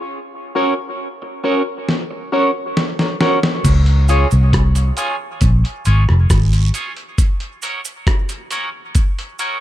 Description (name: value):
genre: dub reggae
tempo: 68 BPM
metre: 4/4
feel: straight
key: Db major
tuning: A4 = 439 Hz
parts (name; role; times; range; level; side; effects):
- clean electric guitar; accompaniment; 0.6-9.6 s; Db4 to Db5; -23 LUFS; right 5 dB; tremolo, high-pass filter, dub echo
- percussive organ stab; stabs; 0.6-9.6 s; F4 to Db5; -24 LUFS; left 6 dB; chorus, high-pass filter, dub echo
- dusty soul sampler-style drum kit; drums; 1.9-9.6 s; crash cymbal, hi-hat, kick drum, rim click, snare drum; -18 LUFS; equal; none
- cabasa and guiro; percussion; 3.6-9.6 s; none; -30 LUFS; right 8 dB; high-pass filter on perc
- vintage muted fingered electric bass; bass; 3.7-6.7 s; F1 to Db2; -12 LUFS; equal; none
room: digital ambience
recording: echo-heavy mix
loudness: -14 LUFS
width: side -13 dB against mid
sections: 0.0-3.6 A section; 3.6-9.6 B section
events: break 0.0-3.6, 7.2-9.6; filter sweep 0.1-9.6; drum fill 1.9-3.6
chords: 0.1 Gb; 3.6 Db; 7.2 Gb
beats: | 0.11 0.99 1.88 2.76 | 3.65 4.53 5.42 6.30 | 7.18 8.07 8.95